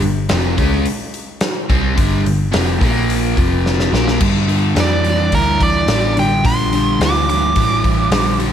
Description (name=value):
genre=blues rock power trio and southern rock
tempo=108 BPM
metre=4/4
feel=straight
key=G minor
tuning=A4 = 441 Hz
part: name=crunchy overdriven guitar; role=riff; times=0.0-8.5 s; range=F2 to C#4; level=-17 LUFS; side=equal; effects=spring reverb
part: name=vintage muted picked electric bass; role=bass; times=0.0-8.5 s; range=F1 to G2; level=-19 LUFS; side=equal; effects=none
part: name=big rock drum kit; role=drums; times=0.0-8.5 s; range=crash cymbal, hi-hat, kick drum, snare drum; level=-19 LUFS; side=equal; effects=none
part: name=nasal lead guitar with a parked wah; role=melody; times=4.8-8.4 s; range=Bb4 to D6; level=-18 LUFS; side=right 3 dB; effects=overdrive
room=light reverb, studio ambience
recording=none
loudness=-13 LUFS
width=side -9 dB against mid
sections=0.0-4.2 A section; 4.2-8.5 B section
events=drum fill 3.7-4.2; lead electric guitar solo 4.2-8.5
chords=0.0 G5; 2.8 Bb5; 3.4 F5; 3.9 Bb5; 4.2 Gm7